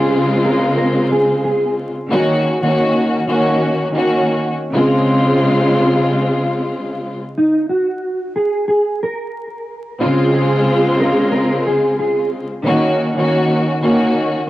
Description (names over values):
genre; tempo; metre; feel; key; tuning
hip hop; 91 BPM; 4/4; swing 62% on 16ths; unclear; A4 = 440 Hz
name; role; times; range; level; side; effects
mellow electric guitar; melody; 0.0-1.7, 7.4-12.3 s; Eb4 to Bb4; -18 LUFS; right 1 dB; ensemble chorus, high-pass filter, low-pass filter, ping-pong delay
warm studio string section; accompaniment; 0.0-14.4 s; Db3 to Gb4; -14 LUFS; equal; high-pass filter, low-pass filter
room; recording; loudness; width
light reverb, studio reverb; worn, warbling old tape, cassette tape, vinyl crackle, warbly pitch drift; -14 LUFS; side -16 dB against mid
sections
0.0-7.4 A section; 7.4-14.5 B section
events
break 7.4-10.0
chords
0.0 Dbmaj7; 2.1 Ebm7; 4.7 Dbmaj7; 7.4 N.C.; 10.0 Dbmaj7; 12.6 Ebm7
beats
0.11 0.77 1.43 | 2.09 2.75 3.41 4.07 | 4.73 5.39 6.05 6.71 | 7.37 8.03 8.69 9.35 | 10.00 10.66 11.32 11.98 | 12.64 13.30 13.96